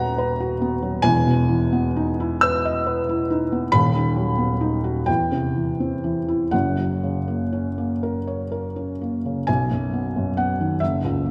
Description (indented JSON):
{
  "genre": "classical, romantic nocturne for solo piano",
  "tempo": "40-47 BPM (dotted quarters)",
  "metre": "6/8",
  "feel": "rubato",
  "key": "B major",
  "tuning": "A4 = 444 Hz",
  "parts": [
    { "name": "felt-muted upright piano", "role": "solo", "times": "0.0-11.3 s", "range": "D#1 to E6", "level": "-22 LUFS", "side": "equal", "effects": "none" }
  ],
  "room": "wet scoring stage reverb, RT60 1.8 s",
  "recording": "none",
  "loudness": "-22 LUFS",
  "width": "mono",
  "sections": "0.0-9.5 A section; 9.5-11.3 B section",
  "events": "none",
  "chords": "0.0 B/D#; 1.1 Emaj7; 3.7 B/D#; 5.1 C/E; 6.5 F#; 9.5 B",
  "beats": "| 1.05 2.43 | 3.73 5.08 | 6.52 8.02 | 9.47 10.81"
}